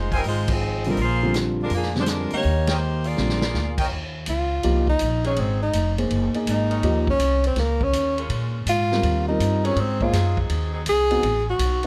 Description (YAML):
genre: jazz, big band swing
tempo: 164 BPM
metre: 4/4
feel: swing 66% on 8ths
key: unclear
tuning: A4 = 440 Hz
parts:
  - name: warm saxophone section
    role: melody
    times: 0.0-3.8 s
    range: F3 to D5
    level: -28 LUFS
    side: equal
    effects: plate reverb
  - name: upright bass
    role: bass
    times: 0.0-11.9 s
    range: F1 to Bb2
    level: -26 LUFS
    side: equal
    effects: none
  - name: clear trumpet section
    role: stabs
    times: 0.1-0.2, 2.7-3.9 s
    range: Bb4 to Ab5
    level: -32 LUFS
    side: equal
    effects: none
  - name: vintage drum kit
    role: drums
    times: 0.1-11.9 s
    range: crash cymbal, hi-hat, kick drum, ride cymbal, snare drum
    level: -32 LUFS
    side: equal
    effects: none
  - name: dark grand piano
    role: accompaniment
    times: 0.9-11.9 s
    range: D3 to Eb5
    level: -28 LUFS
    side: equal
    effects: none
  - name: breathy tenor saxophone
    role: melody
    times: 4.3-11.9 s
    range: Bb3 to Ab4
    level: -25 LUFS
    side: equal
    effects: plate reverb
  - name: warm saxophone section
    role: sustained chords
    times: 5.2-10.8 s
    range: Gb3 to Bb4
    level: -37 LUFS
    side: equal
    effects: none
room: light reverb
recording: none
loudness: -22 LUFS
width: mono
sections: 0.0-3.9 A section; 3.9-11.9 B section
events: band accent 0.4, 2.6; drum fill 3.2-3.5; tenor saxophone solo 3.9-11.9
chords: 0.0 Fm7; 1.0 Bb7; 2.4 Eb7; 3.2 Bb7; 3.9 Eb7; 5.4 Ab7; 6.8 Eb7; 8.3 Bbm7; 9.0 Eb; 9.8 Ab7; 11.2 A5